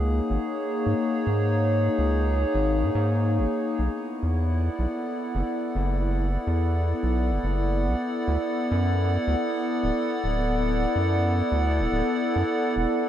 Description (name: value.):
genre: IDM.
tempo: 107 BPM.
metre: 4/4.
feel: swing 56% on 16ths.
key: unclear.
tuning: A4 = 440 Hz.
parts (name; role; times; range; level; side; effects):
hollow soft pad; sustained chords; 0.0-13.1 s; A#3 to F#5; -25 LUFS; left 1 dB; chorus, shimmer reverb.
round analog bass; bass; 0.0-12.9 s; D1 to G#2; -24 LUFS; equal; none.
room: moderate plate reverb, RT60 3.2 s.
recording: dreamy mix soaked in reverb.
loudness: -22 LUFS.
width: side -10 dB against mid.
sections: 0.0-12.8 A section.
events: none.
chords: 0.0 G#5; 3.8 Bm7; 8.3 D.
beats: 0.43 0.99 | 1.55 2.11 2.67 3.23 | 3.79 4.35 4.91 5.47 | 6.03 6.59 7.16 7.72 | 8.28 8.84 9.40 9.96 | 10.52 11.08 11.64 12.20 | 12.76.